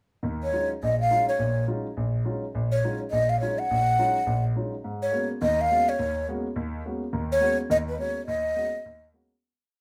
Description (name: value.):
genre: jazz.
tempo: 209 BPM.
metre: 4/4.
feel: swing 61% on 8ths.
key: Eb minor.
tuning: A4 = 440 Hz.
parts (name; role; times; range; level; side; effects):
warm grand piano; accompaniment; 0.2-9.3 s; Bb1 to Gb4; -30 LUFS; equal; none.
breathy mellow jazz flute; melody; 0.4-9.1 s; Cb5 to Gb5; -26 LUFS; equal; none.
room: wet large studio reverb, RT60 0.9 s.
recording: none.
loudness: -26 LUFS.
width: mono.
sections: 0.2-9.4 A section.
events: fade-out 7.6-9.4.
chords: 0.2 Ebm11; 4.8 Abm11.